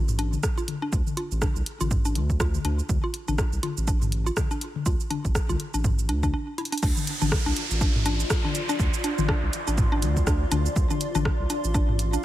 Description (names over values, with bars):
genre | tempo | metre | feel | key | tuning
minimal techno | 122 BPM | 4/4 | swing 58% on 16ths | D minor | A4 = 439 Hz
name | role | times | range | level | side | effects
saturated sub bass | bass | 0.0-12.2 s | A1 to D2 | -26 LUFS | equal | sidechain pumping
punchy analog drum machine | drums | 0.1-12.2 s | crash cymbal, hi-hat, rim click, shaker | -32 LUFS | right 1 dB | overdrive
electronic toms | percussion | 0.1-12.0 s | none | -31 LUFS | left 4 dB | none
mallet-like synth pluck | riff | 0.2-12.2 s | D4 to F4 | -32 LUFS | equal | chorus, cassette tape, sidechain pumping, tape echo
electronic kick drum | drums | 0.4-11.9 s | none | -25 LUFS | equal | overdrive
downlifter | sound effects | 6.8-10.8 s | none | -32 LUFS | right 2 dB | none
granular cloud pad | texture | 7.3-12.2 s | F4 to C6 | -33 LUFS | left 1 dB | built-in reverb, sidechain pumping
room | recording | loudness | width
little or no reverb | none | -23 LUFS | side -14 dB against mid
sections
0.0-6.8 A section; 6.8-12.2 B section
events
break 6.3-6.8; drum fill 6.6; drop 6.8-12.2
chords
0.0 D5; 6.8 Dm7